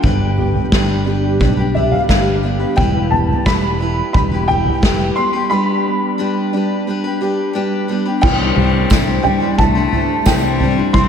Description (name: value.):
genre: indie folk with a building arrangement.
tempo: 88 BPM.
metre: 4/4.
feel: straight.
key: C major.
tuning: A4 = 440 Hz.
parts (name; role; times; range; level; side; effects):
dark upright piano; melody; 0.0-11.1 s; E5 to C6; -20 LUFS; equal; ensemble chorus, analog delay.
fingerpicked steel-string acoustic guitar; accompaniment; 0.0-2.8 s; G2 to G4; -23 LUFS; left 1 dB; ensemble chorus.
picked steel-string acoustic guitar; accompaniment; 0.0-11.1 s; C3 to C5; -21 LUFS; left 4 dB; none.
dark upright piano; arpeggios; 0.0-11.1 s; E3 to G4; -22 LUFS; right 3 dB; none.
picked electric bass; bass; 0.0-11.1 s; E1 to C2; -19 LUFS; equal; none.
soft-mallet drum kit; drums; 0.0-11.1 s; crash cymbal, kick drum, snare drum, toms; -17 LUFS; equal; none.
rich cello; second line; 8.2-11.1 s; G3 to C4; -20 LUFS; left 5 dB; analog delay.
tambourine; percussion; 8.9-10.4 s; none; -34 LUFS; right 12 dB; none.
room: wet lush hall reverb, RT60 2.7 s.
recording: dreamy mix soaked in reverb.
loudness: -13 LUFS.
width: side -8 dB against mid.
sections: 0.0-8.2 A section; 8.2-11.1 B section.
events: break 5.5-8.2.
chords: 0.0 G; 2.8 Em; 5.5 G; 8.2 Cadd9.